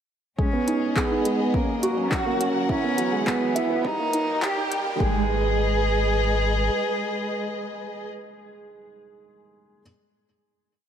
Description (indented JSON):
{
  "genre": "piano and strings electronica",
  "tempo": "104 BPM",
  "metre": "4/4",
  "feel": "straight",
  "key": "G# minor",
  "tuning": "A4 = 440 Hz",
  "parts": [
    { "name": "dark cello", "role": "melody", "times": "0.4-8.1 s", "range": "A#3 to G#4", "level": "-26 LUFS", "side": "equal", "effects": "none" },
    { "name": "warm studio string section", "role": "sustained chords", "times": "0.4-8.1 s", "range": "D#3 to G5", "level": "-30 LUFS", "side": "equal", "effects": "sidechain pumping" },
    { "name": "felt-muted upright piano", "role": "riff", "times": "0.4-9.8 s", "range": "F#3 to G#4", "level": "-27 LUFS", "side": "right 2 dB", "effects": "none" },
    { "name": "warm sub bass", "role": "bass", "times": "0.4-6.7 s", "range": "G#1", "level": "-25 LUFS", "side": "left 1 dB", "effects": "sidechain pumping, high-pass filter" },
    { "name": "electronic kick drum", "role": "drums", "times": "0.4-5.1 s", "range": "none", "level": "-27 LUFS", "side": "left 1 dB", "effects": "overdrive" },
    { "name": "riser", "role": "sound effects", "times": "1.9-5.0 s", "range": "none", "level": "-35 LUFS", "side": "right 4 dB", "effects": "none" },
    { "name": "organic electronic drum kit", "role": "drums", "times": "0.7-4.8 s", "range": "handclaps, hi-hat", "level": "-31 LUFS", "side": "left 1 dB", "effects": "none" }
  ],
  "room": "moderate echo chamber reverb, RT60 2.5 s",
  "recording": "high-pass filter",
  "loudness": "-21 LUFS",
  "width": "side -8 dB against mid",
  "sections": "0.4-5.0 build; 5.0-7.3 final chord",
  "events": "build-up 0.4-5.0; filter sweep 0.4-5.0; riser 1.9-5.0",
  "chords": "0.4 G#m; 1.5 F#; 2.7 Eadd9; 3.8 D#; 5.0 G#m",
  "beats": "| 0.39 0.96 1.54 2.12 | 2.69 3.27 3.85 4.43 | 5.00 5.58 6.16 6.73"
}